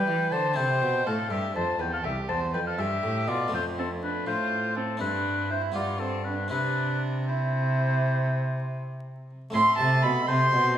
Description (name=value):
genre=classical, baroque-style sonata movement with continuo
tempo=81 BPM (dotted quarters)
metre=12/8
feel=straight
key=C major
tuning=A4 = 440 Hz
part: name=warm oboe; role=melody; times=0.0-10.8 s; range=A4 to A5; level=-30 LUFS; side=left 4 dB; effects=none
part: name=dark violin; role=second line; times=0.0-10.8 s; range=C4 to C6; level=-28 LUFS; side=right 3 dB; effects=none
part: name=harpsichord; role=accompaniment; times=0.0-10.8 s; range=C2 to F4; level=-34 LUFS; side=left 1 dB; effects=none
part: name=rich cello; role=bass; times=0.0-10.8 s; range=C2 to E3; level=-29 LUFS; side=equal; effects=none
room=wet recital hall reverb, RT60 1.4 s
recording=minimal, uncompressed stereo recording, vinyl crackle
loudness=-24 LUFS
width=side -10 dB against mid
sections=0.0-9.5 A section; 9.5-10.8 A section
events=none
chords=0.0 G7; 0.6 C; 3.5 F; 5.0 C/G; 5.8 G7; 6.5 C; 9.5 Am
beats=| 0.57 1.31 2.05 2.79 | 3.53 4.27 5.01 5.75 | 6.51 7.27 8.03 8.79 | 9.54 10.28